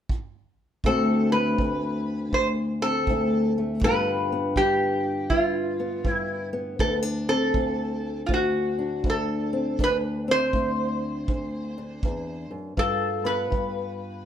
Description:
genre	acoustic country blues, solo or duo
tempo	80 BPM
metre	4/4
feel	swing 64% on 8ths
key	unclear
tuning	A4 = 440 Hz
part	kick drum	drums	0.1-13.8 s	none	-28 LUFS	right 1 dB	none
part	fingerpicked old ladder-braced acoustic guitar	accompaniment	0.8-14.3 s	D2 to G4	-26 LUFS	left 2 dB	none
part	metal-body resonator slide guitar	melody	0.9-14.3 s	F4 to C5	-25 LUFS	equal	none
room	wet recital hall reverb, RT60 1.4 s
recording	none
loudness	-23 LUFS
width	side -9 dB against mid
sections	0.8-14.3 A section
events	none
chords	0.0 N.C.; 0.8 D7; 3.8 G7; 6.8 D7(no3); 12.8 G7

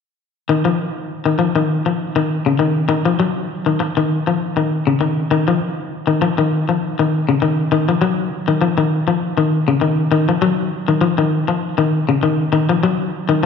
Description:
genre	afrobeat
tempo	100 BPM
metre	4/4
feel	swing 55% on 16ths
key	unclear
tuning	A4 = 439 Hz
part	clean electric guitar	arpeggios	0.5-13.5 s	C#3 to F#3	-15 LUFS	left 3 dB	none
room	wet echo chamber reverb, RT60 2.3 s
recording	none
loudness	-15 LUFS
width	side -6 dB against mid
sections	0.5-13.5 A section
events	none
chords	none

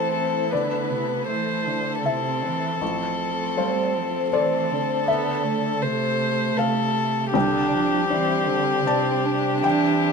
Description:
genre	neoclassical piano and strings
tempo	79 BPM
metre	3/4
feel	rubato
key	unclear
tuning	A4 = 440 Hz
part	warm violin	melody	0.0-10.1 s	G4 to C5	-25 LUFS	left 5 dB	none
part	dark cello	second line	0.0-10.1 s	C3 to G3	-29 LUFS	right 6 dB	none
part	felt-muted upright piano	accompaniment	0.0-10.1 s	A1 to A5	-27 LUFS	left 3 dB	none
part	warm viola	accompaniment	0.0-10.1 s	A3 to D4	-27 LUFS	right 3 dB	none
part	dark chamber string section	sustained chords	0.0-10.1 s	G3 to A4	-31 LUFS	right 2 dB	none
room	moderate studio reverb, RT60 0.7 s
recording	minimal, uncompressed stereo recording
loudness	-20 LUFS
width	side -5 dB against mid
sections	0.0-10.1 A section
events	none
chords	0.0 Am; 2.8 F/A; 7.3 Csus2

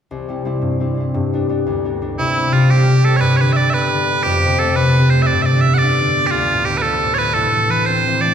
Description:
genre	celtic folk, Celtic jig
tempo	116 BPM (dotted quarters)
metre	6/8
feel	straight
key	C major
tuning	A4 = 440 Hz
part	concert harp	accompaniment	0.1-8.3 s	C2 to E4	-16 LUFS	left 1 dB	none
part	loud bright bagpipes	melody	2.2-8.3 s	E4 to F#5	-16 LUFS	right 3 dB	none
room	wet concert hall reverb, RT60 1.9 s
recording	recorded in a church or concert hall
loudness	-14 LUFS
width	side -8 dB against mid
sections	0.1-2.2 A section; 2.2-8.3 B section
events	none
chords	0.1 C; 1.1 G; 2.2 C; 3.2 G; 4.3 F; 5.3 G; 6.3 Dm; 7.4 Am

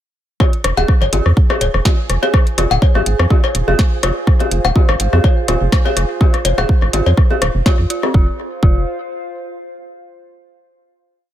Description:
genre	minimal techno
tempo	124 BPM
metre	4/4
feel	swing 54% on 16ths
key	F minor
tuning	A4 = 440 Hz
part	dark detuned synth bell	riff	0.4-8.9 s	C4 to Ab4	-24 LUFS	right 3 dB	chorus, tremolo, sidechain pumping, digital delay
part	electronic kick drum	drums	0.4-8.7 s	none	-12 LUFS	equal	none
part	electronic rim click, cowbell and bongos	percussion	0.4-8.1 s	none	-19 LUFS	left 6 dB	overdrive, digital delay
part	bubbling stepped-filter texture	texture	1.0-8.2 s	Ab4	-31 LUFS	right 8 dB	chorus, built-in reverb, sidechain pumping
part	warbly tape-like pad	texture	1.6-10.0 s	F4 to F5	-27 LUFS	right 2 dB	chorus, built-in reverb, sidechain pumping
part	booming analog drum machine	drums	0.5-8.0 s	hi-hat, snare drum	-22 LUFS	right 1 dB	none
part	rubbery square bass	bass	0.6-8.9 s	Eb1 to F2	-16 LUFS	equal	sidechain pumping
room	little or no reverb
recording	none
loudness	-12 LUFS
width	side -12 dB against mid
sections	0.4-8.1 groove; 8.1-10.1 final chord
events	none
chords	0.4 F5

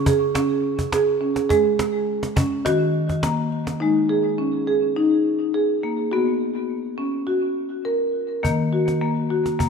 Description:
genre	world meditative, meditative tuned percussion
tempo	104 BPM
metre	4/4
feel	straight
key	unclear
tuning	A4 = 442 Hz
part	marimba with medium mallets	arpeggios	0.0-9.7 s	Db3 to Bb4	-20 LUFS	equal	diffuse ambient delay
part	cajon	percussion	0.1-3.8, 8.4-9.7 s	none	-25 LUFS	equal	none
room	wet echo chamber reverb, RT60 2.1 s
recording	none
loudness	-19 LUFS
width	side -5 dB against mid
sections	0.0-3.8 A section; 3.8-9.7 B section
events	none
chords	0.0 Db5; 1.5 Absus4; 2.7 Ebm; 3.8 Ab5; 6.1 B5; 8.4 Ebm

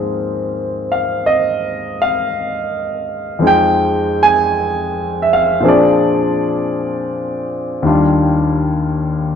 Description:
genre	jazz ballad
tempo	54 BPM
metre	4/4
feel	swing 69% on 8ths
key	unclear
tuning	A4 = 440 Hz
part	warm concert grand piano	solo	0.0-9.4 s	Eb2 to Ab5	-14 LUFS	equal	none
room	wet echo chamber reverb, RT60 2.0 s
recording	none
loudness	-14 LUFS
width	side -7 dB against mid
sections	0.0-9.4 A section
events	none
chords	0.0 Ab69; 3.4 Fm7; 5.6 Bb7; 7.8 Ebmaj7

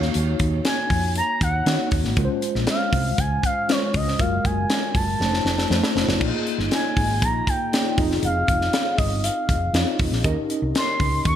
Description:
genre	polished 1980s jazz-funk pop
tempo	119 BPM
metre	4/4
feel	straight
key	Db major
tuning	A4 = 440 Hz
part	mellow tine electric piano	accompaniment	0.0-11.4 s	Ab3 to Eb5	-26 LUFS	left 1 dB	medium stereo tremolo, analog chorus
part	woody fretless electric bass	bass	0.0-11.4 s	F1 to Eb3	-24 LUFS	equal	none
part	tight funk drum kit	drums	0.0-11.4 s	crash cymbal, hi-hat, kick drum, snare drum	-24 LUFS	equal	gated reverb
part	expressive portamento lead	melody	0.7-11.4 s	Db5 to Db6	-25 LUFS	equal	chorus, digital delay
room	light reverb, small room ambience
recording	bright 1980s-style digital production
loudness	-19 LUFS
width	side -10 dB against mid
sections	0.0-6.2 A section; 6.2-11.4 A section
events	drum fill 5.2-6.2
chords	0.0 Ebm7; 2.2 Dbmaj7; 4.2 Gbmaj9; 5.2 F7; 6.2 Bb7sus4; 8.0 Fm7; 10.2 Eb7

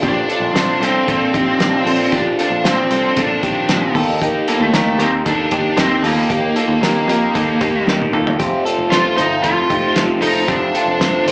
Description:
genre	jangly indie pop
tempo	115 BPM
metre	4/4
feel	straight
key	unclear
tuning	A4 = 439 Hz
part	high-gain lead guitar	melody	0.0-11.2 s	A3 to F4	-17 LUFS	equal	distortion, slapback echo, plate reverb
part	crunchy overdriven guitar	accompaniment	0.0-11.3 s	F2 to G4	-20 LUFS	equal	phaser, plate reverb, slapback echo
part	direct-recorded clean electric guitar	arpeggios	0.0-11.3 s	Eb3 to C5	-20 LUFS	equal	slapback echo, plate reverb
part	picked electric bass	bass	0.0-11.3 s	F1 to F2	-23 LUFS	equal	none
part	cloth-damped thuddy drum kit	drums	0.0-11.3 s	hi-hat, kick drum, snare drum, toms	-21 LUFS	equal	none
part	warm analog pad	sustained chords	8.4-11.3 s	F4 to A5	-24 LUFS	equal	none
room	moderate club reverb, RT60 0.6 s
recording	live gig heard through the venue's PA, club reverb, small speaker sound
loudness	-13 LUFS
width	side -28 dB against mid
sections	0.0-11.3 A section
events	drum fill 7.9-8.4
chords	0.0 Bbadd9; 3.9 Eb; 8.4 F

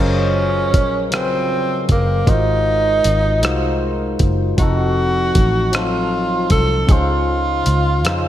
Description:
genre	slow six-eight R&B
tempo	52 BPM (dotted quarters)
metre	6/8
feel	straight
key	Db major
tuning	A4 = 442 Hz
part	breathy tenor saxophone	melody	0.0-8.3 s	Bb3 to A4	-19 LUFS	right 1 dB	slapback echo
part	barky tine electric piano	accompaniment	0.0-8.3 s	Db3 to Eb5	-21 LUFS	left 2 dB	analog chorus
part	vintage muted fingered electric bass	bass	0.0-8.3 s	F1 to F2	-19 LUFS	equal	none
part	dusty soul sampler-style drum kit	drums	0.7-8.2 s	hi-hat, kick drum, rim click	-18 LUFS	equal	none
room	moderate lush hall reverb, RT60 2.0 s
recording	big arena sound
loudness	-14 LUFS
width	side -12 dB against mid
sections	0.0-8.3 A section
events	none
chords	0.0 Gbmaj9#11; 2.3 Ab13; 4.6 F7b9; 6.9 Dbmaj9

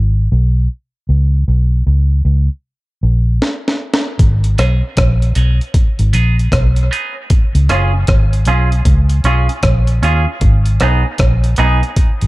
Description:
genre	dub reggae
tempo	77 BPM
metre	4/4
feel	swing 64% on 16ths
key	G# dorian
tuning	A4 = 440 Hz
part	vintage muted fingered electric bass	bass	0.0-12.3 s	F#1 to D#2	-12 LUFS	equal	none
part	breakbeat sampler-style drum kit	drums	3.4-12.3 s	hi-hat, kick drum, rim click, snare drum	-15 LUFS	equal	none
part	semi-hollow electric guitar	accompaniment	4.6-11.8 s	B3 to G#4	-19 LUFS	right 3 dB	high-pass filter, dub echo
room	digital ambience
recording	dark, warm production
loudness	-11 LUFS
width	side -19 dB against mid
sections	0.0-4.2 A section; 4.2-12.3 B section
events	break 0.0-4.2; drum fill 3.4-4.2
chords	0.0 G#m; 1.1 A#m; 4.2 G#m; 7.3 C#; 10.4 G#m

